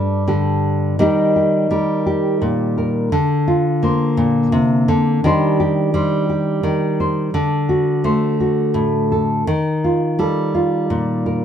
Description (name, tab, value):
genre	folk, solo fingerstyle acoustic guitar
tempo	56 BPM (dotted quarters)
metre	6/8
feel	straight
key	unclear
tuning	A4 = 440 Hz
part	nylon-string guitar	solo	0.0-11.4 s	G2 to C5	-15 LUFS	equal	none
room	moderate small room ambience, RT60 0.5 s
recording	none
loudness	-15 LUFS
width	side -8 dB against mid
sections	1.0-11.4 A section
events	none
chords	0.0 G5; 1.0 Eb; 3.1 Bbadd9/D; 5.2 Cmadd9/Eb; 7.3 D; 9.5 Ebadd9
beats	| 0.98 2.06 | 3.12 4.18 | 5.23 6.28 | 7.33 8.39 | 9.47 10.54